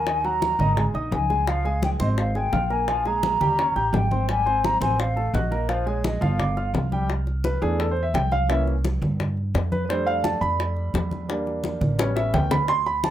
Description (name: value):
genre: Afro-Cuban jazz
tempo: 171 BPM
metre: 4/4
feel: straight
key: C major from 7.1 s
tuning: A4 = 441 Hz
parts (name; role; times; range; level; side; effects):
- mellow hollow silver concert flute; melody; 0.0-6.8 s; C5 to Bb5; -24 LUFS; left 1 dB; none
- clear grand piano; accompaniment; 0.0-13.1 s; Eb3 to G6; -26 LUFS; right 2 dB; none
- upright bass; bass; 0.0-13.1 s; G1 to G2; -26 LUFS; equal; none
- bongos; percussion; 0.1-13.1 s; none; -30 LUFS; left 5 dB; none
- congas; percussion; 0.1-13.1 s; none; -29 LUFS; equal; none
room: moderate small room reverb, RT60 0.5 s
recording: rough home demo mix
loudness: -21 LUFS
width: side -11 dB against mid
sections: 0.0-7.1 A section; 7.1-13.1 B section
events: grand piano solo 7.1-13.1; drum fill 12.0-12.7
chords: 0.1 Ebm; 0.8 Absus2; 1.5 Dbmaj7; 2.9 Bb5; 3.6 Eb7; 4.3 Abmaj7; 5.0 Adim7; 5.7 Bb5; 6.4 G5; 7.1 C6; 8.5 C7b9; 9.9 F6; 11.3 Em7b5; 12.0 A7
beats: | 0.07 0.42 0.77 1.12 | 1.47 1.82 2.18 2.53 | 2.88 3.23 3.58 3.94 | 4.29 4.64 4.99 5.34 | 5.69 6.04 6.39 6.74 | 7.09 7.45 7.79 8.14 | 8.50 8.85 9.20 9.55 | 9.89 10.24 10.60 10.94 | 11.29 11.64 11.99 12.34 | 12.69 13.04